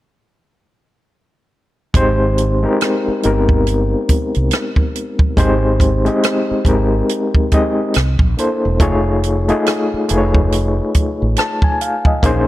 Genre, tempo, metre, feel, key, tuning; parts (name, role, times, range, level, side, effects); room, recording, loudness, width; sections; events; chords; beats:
R&B, neo-soul; 70 BPM; 4/4; swing 60% on 16ths; Ab major; A4 = 442 Hz
overdriven reed electric piano; accompaniment; 1.9-12.5 s; Ab3 to A5; -16 LUFS; left 1 dB; fast tremolo
compact cocktail drum kit; drums; 1.9-12.5 s; hi-hat, kick drum, rim click; -16 LUFS; right 1 dB
mellow fretless electric bass; bass; 2.0-12.5 s; E1 to C2; -17 LUFS; equal; wide subtle chorus
light reverb; dark, warm production; -13 LUFS; side -15 dB against mid
1.9-12.5 A section
1.9 Abmaj7; 7.9 C13; 8.8 F7alt
| 1.94 2.80 3.65 4.51 | 5.37 6.22 7.08 7.94 | 8.80 9.65 10.51 11.37 | 12.22